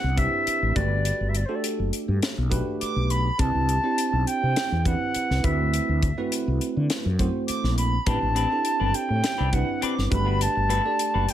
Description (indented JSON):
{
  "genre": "electric jazz fusion",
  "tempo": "103 BPM",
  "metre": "4/4",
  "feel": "straight",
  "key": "unclear",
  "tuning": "A4 = 440 Hz",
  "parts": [
    { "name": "reedy silver concert flute", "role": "melody", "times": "0.0-11.3 s", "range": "C5 to D6", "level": "-26 LUFS", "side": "equal", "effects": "slapback echo" },
    { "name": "bell-like tine electric piano", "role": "accompaniment", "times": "0.0-11.3 s", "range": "A3 to D5", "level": "-29 LUFS", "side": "right 4 dB", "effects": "lush chorus" },
    { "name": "mellow fretless electric bass", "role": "bass", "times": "0.0-11.3 s", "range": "F#1 to D3", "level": "-24 LUFS", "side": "equal", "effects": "none" },
    { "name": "crisp fusion drum kit", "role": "drums", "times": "0.2-11.3 s", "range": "hi-hat, kick drum, snare drum", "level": "-29 LUFS", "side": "left 1 dB", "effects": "none" },
    { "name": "semi-hollow electric guitar", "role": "stabs", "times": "8.1-11.3 s", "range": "A3 to B4", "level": "-32 LUFS", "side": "left 9 dB", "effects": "lush chorus" }
  ],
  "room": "light reverb, studio ambience",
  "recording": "none",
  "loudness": "-22 LUFS",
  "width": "side -11 dB against mid",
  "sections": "0.0-11.3 A section",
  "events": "none",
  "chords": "0.0 Am11; 0.8 Gmaj9; 3.4 Cmaj9; 5.4 D13; 8.1 Am11; 10.1 Gmaj9"
}